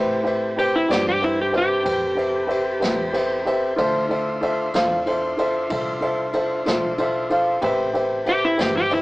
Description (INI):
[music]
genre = slow blues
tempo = 62 BPM (dotted quarters)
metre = 12/8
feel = straight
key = A minor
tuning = A4 = 438 Hz
[part]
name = dark grand piano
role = accompaniment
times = 0.0-9.0 s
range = F4 to G5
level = -21 LUFS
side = equal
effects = none
[part]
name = tonewheel organ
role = sustained chords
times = 0.0-9.0 s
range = C4 to C5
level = -32 LUFS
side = equal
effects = slow rotary speaker
[part]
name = vintage muted fingered electric bass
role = bass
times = 0.0-9.0 s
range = G1 to A2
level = -34 LUFS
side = equal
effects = none
[part]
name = jazz brush drum kit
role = drums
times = 0.3-9.0 s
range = kick drum, ride cymbal, snare drum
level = -30 LUFS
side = equal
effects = none
[part]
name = electric slide guitar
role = melody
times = 0.6-9.0 s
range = E4 to G4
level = -21 LUFS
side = equal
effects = none
[sound]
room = moderate booth ambience, RT60 0.2 s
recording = rough rehearsal-room recording, small speaker sound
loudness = -19 LUFS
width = side -20 dB against mid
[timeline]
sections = 0.0-9.0 A section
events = electric slide guitar solo 0.0-9.0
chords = 0.0 Am9; 3.8 Dm9; 7.6 Am9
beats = 0.90 1.86 2.83 | 3.79 4.75 5.71 6.67 | 7.63 8.59